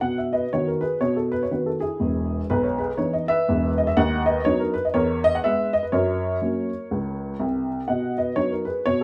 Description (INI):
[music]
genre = jazz, stride piano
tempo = 122 BPM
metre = 4/4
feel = swing 60% on 8ths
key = B major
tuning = A4 = 440 Hz
[part]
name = dark upright piano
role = solo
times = 0.0-9.0 s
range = E1 to F#5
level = -23 LUFS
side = equal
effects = none
[sound]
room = moderate stone room reverb, RT60 1.0 s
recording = band playing live in one room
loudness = -23 LUFS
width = mono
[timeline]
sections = 0.0-9.0 A section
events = none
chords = 0.0 B; 2.0 Emaj7; 4.0 B/D#; 4.9 E; 5.9 F#; 7.9 B